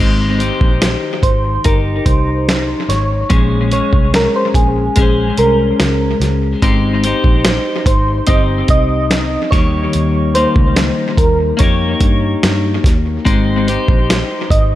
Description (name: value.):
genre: indie pop, bedroom pop.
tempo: 72 BPM.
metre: 4/4.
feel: straight.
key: Ab major.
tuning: A4 = 438 Hz.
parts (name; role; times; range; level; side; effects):
clean electric guitar; accompaniment; 0.0-14.8 s; Bb2 to Db5; -17 LUFS; left 3 dB; wide subtle chorus, warbly pitch drift, analog delay.
vintage muted fingered electric bass; bass; 0.0-14.8 s; G1 to G2; -18 LUFS; equal; none.
dusty soul sampler-style drum kit; drums; 0.4-14.7 s; hi-hat, kick drum, snare drum; -14 LUFS; equal; analog delay.
soft electric-piano-like synth keys; melody; 1.2-14.8 s; Ab4 to Eb5; -18 LUFS; right 1 dB; ensemble chorus, analog delay.
room: light reverb.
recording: echo-heavy mix.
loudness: -11 LUFS.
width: side -14 dB against mid.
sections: 0.0-14.8 A section.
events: none.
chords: 0.0 Abmaj7; 3.3 Bbm9; 6.6 Abmaj7; 9.5 Eb7; 13.3 Abmaj7.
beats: 0.82 1.66 2.48 | 3.31 4.14 4.97 5.80 | 6.63 7.46 8.28 9.11 | 9.94 10.77 11.60 12.43 | 13.26 14.09.